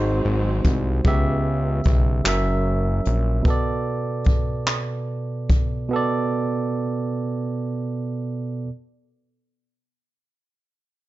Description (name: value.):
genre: slow six-eight R&B.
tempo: 40-50 BPM (dotted quarters).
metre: 6/8.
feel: straight.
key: B minor.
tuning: A4 = 440 Hz.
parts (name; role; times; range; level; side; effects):
barky tine electric piano; accompaniment; 0.0-8.7 s; B2 to E5; -24 LUFS; right 2 dB; plate reverb.
warm studio string section; sustained chords; 0.0-1.0 s; F#3 to B#3; -33 LUFS; left 4 dB; plate reverb.
fat analog bass; bass; 0.0-3.4 s; F#1 to C#2; -22 LUFS; equal; none.
jazz brush drum kit; drums; 0.6-5.7 s; handclaps, hi-hat, kick drum; -21 LUFS; equal; none.
room: little or no reverb.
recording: nothing above 7.6 kHz.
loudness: -20 LUFS.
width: side -16 dB against mid.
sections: 0.0-8.7 A section.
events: slowing down 3.5-8.7.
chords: 0.0 G#7; 1.1 C#m7b5; 2.2 F#7; 3.5 Bm7.